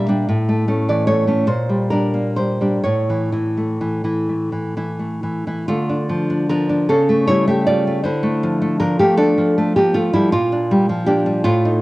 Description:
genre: romantic piece for solo classical guitar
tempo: 41-55 BPM (dotted quarters)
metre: 6/8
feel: rubato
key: D minor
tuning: A4 = 440 Hz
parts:
  - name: nylon-string guitar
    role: solo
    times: 0.0-11.8 s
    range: A2 to E5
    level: -16 LUFS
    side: equal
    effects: none
room: moderate spring reverb, RT60 2.5 s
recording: home recording on cassette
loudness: -16 LUFS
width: side -19 dB against mid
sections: 0.0-5.7 A section; 5.7-11.8 B section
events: none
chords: 0.3 A; 1.5 Gm/Bb; 2.8 A; 5.7 Dm; 6.9 A7/C#; 8.1 Dm; 10.3 Bb6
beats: | 0.28 1.49 | 2.83 4.28 | 5.66 6.89 | 8.07 9.20 | 10.34 11.45

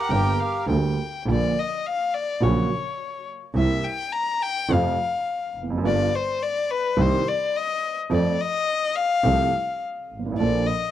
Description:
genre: tango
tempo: 105 BPM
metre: 4/4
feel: rubato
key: Bb major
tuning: A4 = 440 Hz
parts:
  - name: bandoneon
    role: melody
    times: 0.0-0.7 s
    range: G4 to Bb4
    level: -26 LUFS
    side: right 2 dB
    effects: none
  - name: warm violin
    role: second line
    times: 0.0-10.9 s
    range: B4 to Bb5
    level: -24 LUFS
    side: left 5 dB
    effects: none
  - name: dark baby grand piano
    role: accompaniment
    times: 0.1-10.6 s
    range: G1 to A4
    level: -25 LUFS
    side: right 4 dB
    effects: none
  - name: clear double bass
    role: bass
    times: 0.1-10.6 s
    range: F1 to F2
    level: -24 LUFS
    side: right 1 dB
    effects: none
room: studio ambience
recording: dry, close 1970s-style studio recording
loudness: -21 LUFS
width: side -12 dB against mid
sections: 0.0-1.3 A section; 1.3-10.9 B section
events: violin solo 1.3-10.9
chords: 0.0 Gm; 1.3 Bb; 2.4 Gb/Bb; 3.6 C7; 4.7 F; 5.8 G7; 7.0 Cm7; 8.1 F; 10.4 Bbmaj7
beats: 0.11 0.69 | 1.27 1.85 2.42 3.00 | 3.56 4.13 4.70 5.26 | 5.83 6.39 6.96 7.53 | 8.09 8.66 9.24 9.81 | 10.39

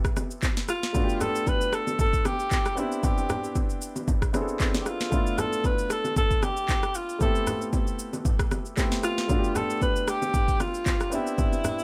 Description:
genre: amapiano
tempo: 115 BPM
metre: 4/4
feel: swing 55% on 16ths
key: unclear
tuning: A4 = 440 Hz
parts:
  - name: clear grand piano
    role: accompaniment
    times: 0.0-11.8 s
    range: A3 to A4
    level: -34 LUFS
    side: equal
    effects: none
  - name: afro-pop drum kit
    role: drums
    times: 0.0-11.8 s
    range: handclaps, kick drum, rim click, shaker, snare drum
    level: -29 LUFS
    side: equal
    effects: none
  - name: bongos and congas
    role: percussion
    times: 0.2-11.8 s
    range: none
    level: -37 LUFS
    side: equal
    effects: none
  - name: warm alto saxophone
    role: melody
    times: 0.7-11.8 s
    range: E4 to B4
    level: -31 LUFS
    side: equal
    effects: digital delay
room: light reverb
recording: none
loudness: -26 LUFS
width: mono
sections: 0.0-11.8 A section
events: none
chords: 0.0 Am9; 0.9 G7; 2.8 Cmaj7; 5.1 Dm69; 7.2 Am9; 9.3 G7; 11.1 Cmaj7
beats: 0.43 | 0.95 1.47 1.99 2.51 | 3.04 3.56 4.08 4.60 | 5.12 5.64 6.17 6.69 | 7.21 7.73 8.25 8.77 | 9.30 9.82 10.34 10.86 | 11.38

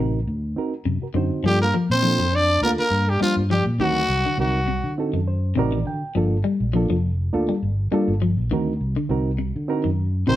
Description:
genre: afrobeat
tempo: 102 BPM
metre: 4/4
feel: swing 55% on 16ths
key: G minor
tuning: A4 = 443 Hz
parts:
  - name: reed electric piano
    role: accompaniment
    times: 0.0-10.4 s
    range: Bb3 to G5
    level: -26 LUFS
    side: right 3 dB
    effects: none
  - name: clean electric guitar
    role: arpeggios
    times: 0.0-10.4 s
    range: C3 to G3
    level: -25 LUFS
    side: left 3 dB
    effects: none
  - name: fingered electric bass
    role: bass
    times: 0.0-10.4 s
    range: F1 to D3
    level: -23 LUFS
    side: equal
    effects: none
  - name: growling trumpet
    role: melody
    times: 1.5-4.9, 10.3-10.4 s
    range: F4 to D5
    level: -22 LUFS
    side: left 1 dB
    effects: none
  - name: trombone with bucket mute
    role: second line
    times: 1.5-5.0, 10.3-10.4 s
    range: F3 to D4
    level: -28 LUFS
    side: right 3 dB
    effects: none
room: moderate stone room reverb, RT60 1.0 s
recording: band playing live in one room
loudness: -19 LUFS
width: side -14 dB against mid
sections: 0.0-1.4 A section; 1.4-10.4 B section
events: reed electric piano fill 5.0-6.2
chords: 0.0 D7b9b13; 1.4 Gm7; 3.8 D7b9b13; 6.2 Gm7; 8.5 D7b9b13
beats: 0.27 0.86 | 1.45 2.04 2.62 3.21 | 3.80 4.39 4.97 5.56 | 6.15 6.74 7.33 7.92 | 8.50 9.09 9.68 10.27

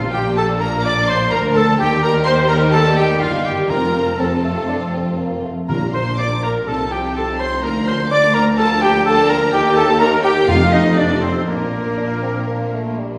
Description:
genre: quick classical-period movement for symphony orchestra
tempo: 124 BPM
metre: 4/4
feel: uneven beats, rubato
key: Bb major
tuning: A4 = 441 Hz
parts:
  - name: bright concert flute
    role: second line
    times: 0.0-13.0 s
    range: Bb4 to D6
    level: -26 LUFS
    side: equal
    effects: none
  - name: mellow clarinet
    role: second line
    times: 0.0-13.0 s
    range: Bb3 to D5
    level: -27 LUFS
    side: equal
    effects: none
  - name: warm studio violin section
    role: second line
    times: 0.0-13.2 s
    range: G3 to Bb4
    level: -31 LUFS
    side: equal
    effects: none
  - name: warm studio viola section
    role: accompaniment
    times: 0.0-13.0 s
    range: Bb3 to D5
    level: -23 LUFS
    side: equal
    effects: none
  - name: dark French horn section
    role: sustained chords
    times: 0.0-13.2 s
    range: Eb3 to Eb4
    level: -27 LUFS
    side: equal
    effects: none
  - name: rich studio cello section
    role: bass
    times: 0.0-13.2 s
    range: D2 to C3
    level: -26 LUFS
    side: equal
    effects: none
  - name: warm studio double bass section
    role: bass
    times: 0.0-13.2 s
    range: F1 to Eb2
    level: -26 LUFS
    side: equal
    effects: none
  - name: timpani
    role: percussion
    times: 0.0-0.6, 3.7-6.4, 10.5-11.2 s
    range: F2 to Bb2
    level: -28 LUFS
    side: equal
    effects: none
  - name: rich studio violin section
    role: melody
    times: 0.1-12.9 s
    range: Bb4 to D6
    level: -26 LUFS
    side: equal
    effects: none
  - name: clear oboe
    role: second line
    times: 0.1-13.0 s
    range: Bb3 to D5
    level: -28 LUFS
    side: equal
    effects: none
  - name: dark bassoon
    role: accompaniment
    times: 4.2-5.7, 12.0-13.2 s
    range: G3 to D4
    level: -30 LUFS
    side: equal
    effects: none
room: wet recital hall reverb, RT60 1.6 s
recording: recorded in a church or concert hall, studio ambience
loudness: -17 LUFS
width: mono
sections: 0.0-13.2 A section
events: none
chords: 0.0 Bb; 1.8 Eb; 3.7 F; 5.7 Bb; 6.7 F7/C; 7.6 Bb/D; 9.5 Eb; 10.5 F7; 11.5 Bb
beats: 0.37 0.85 1.32 | 1.79 2.26 2.73 3.21 | 3.70 4.20 4.70 5.19 | 5.69 6.19 6.68 7.16 | 7.63 8.11 8.58 9.06 | 9.53 10.00 10.48 10.97 | 11.47 11.98 12.48 12.99

